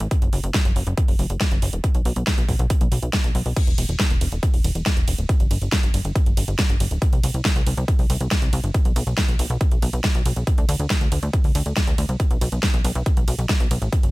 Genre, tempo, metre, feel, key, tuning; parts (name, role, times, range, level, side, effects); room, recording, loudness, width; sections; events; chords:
uplifting trance; 139 BPM; 4/4; straight; A4 = 440 Hz
plucky analog bass; bass; 0.0-14.1 s; D1 to D2; -23 LUFS; equal; sidechain pumping
big-room dance drum kit; drums; 0.0-14.1 s; crash cymbal, hi-hat, ride cymbal, snare drum; -27 LUFS; equal; sidechain pumping on hats, sidechain pumping on cymbals
electronic kick drum; drums; 0.1-14.0 s; -20 LUFS; equal
little or no reverb; -18 LUFS; side -21 dB against mid
0.0-14.1 A section